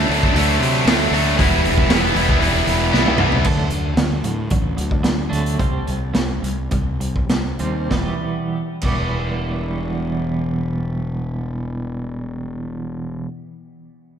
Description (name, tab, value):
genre	quiet-loud alternative rock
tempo	97-116 BPM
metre	4/4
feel	straight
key	E minor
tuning	A4 = 439 Hz
part	cranked stack guitar	riff	0.0-3.4 s	D3 to E4	-20 LUFS	left 12 dB	overdrive
part	tight distorted guitar	riff	0.0-3.4 s	D3 to E4	-20 LUFS	right 10 dB	distortion, slapback echo
part	fuzz fingered electric bass	bass	0.0-13.2 s	E1 to C3	-24 LUFS	equal	overdrive
part	raw garage drum kit	drums	0.1-9.0 s	crash cymbal, hi-hat, kick drum, snare drum, toms	-21 LUFS	equal	none
part	twelve-string electric guitar	arpeggios	3.5-13.3 s	E2 to G4	-24 LUFS	right 2 dB	tremolo, tape echo
room	moderate lush hall reverb, RT60 2.1 s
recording	big arena sound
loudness	-17 LUFS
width	side -8 dB against mid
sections	0.0-3.5 A section; 3.5-7.9 B section; 7.9-12.8 C section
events	drum fill 2.9-3.5; slowing down 3.5-7.9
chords	0.0 D; 1.4 Em; 3.5 D; 5.6 C5; 7.9 Em